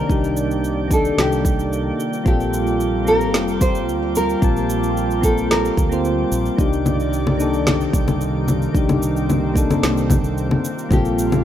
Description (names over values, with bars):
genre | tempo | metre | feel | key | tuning
sunset chillout | 111 BPM | 4/4 | straight | C dorian | A4 = 436 Hz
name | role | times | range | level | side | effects
nylon-string guitar | melody | 0.0-6.3, 10.9-11.4 s | G4 to C5 | -23 LUFS | right 1 dB | digital delay
soft electric-piano-like synth keys | accompaniment | 0.0-11.4 s | Bb3 to A5 | -23 LUFS | moving between left 5 dB and right 4 dB | chorus, auto-pan, digital delay
airy breathy pad | sustained chords | 0.0-11.4 s | C3 to D5 | -24 LUFS | equal | chorus
drifting glass-harmonics texture | texture | 0.0-11.4 s | G4 to G5 | -30 LUFS | left 2 dB | chorus, built-in reverb
mellow fretless electric bass | bass | 0.1-11.4 s | F1 to D2 | -24 LUFS | right 1 dB | none
electronic cabasa, snare drum and congas | drums | 0.1-11.4 s | none | -22 LUFS | left 2 dB | none
electronic kick drum | drums | 0.1-11.0 s | none | -19 LUFS | equal | none
room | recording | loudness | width
light reverb | rough home demo mix | -16 LUFS | side -11 dB against mid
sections
0.0-11.4 A section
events
none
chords
0.0 Cm9; 2.0 Gm11; 6.6 Cm9; 10.6 Gm11